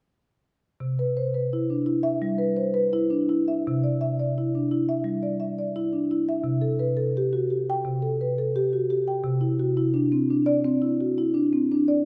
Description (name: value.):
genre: classical, contemporary piece for solo marimba.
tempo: 86 BPM.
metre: 4/4.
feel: rubato.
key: C lydian.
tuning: A4 = 440 Hz.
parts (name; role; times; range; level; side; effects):
marimba with medium mallets; solo; 0.8-12.1 s; C3 to G5; -25 LUFS; equal; none.
room: wet recital hall reverb, RT60 1.8 s.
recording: recorded in a church or concert hall.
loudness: -25 LUFS.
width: mono.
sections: 0.8-3.7 A section; 3.7-12.1 B section.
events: none.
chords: 0.8 Cmaj7; 3.7 Cadd9; 6.5 Am7/C; 9.3 Cadd9.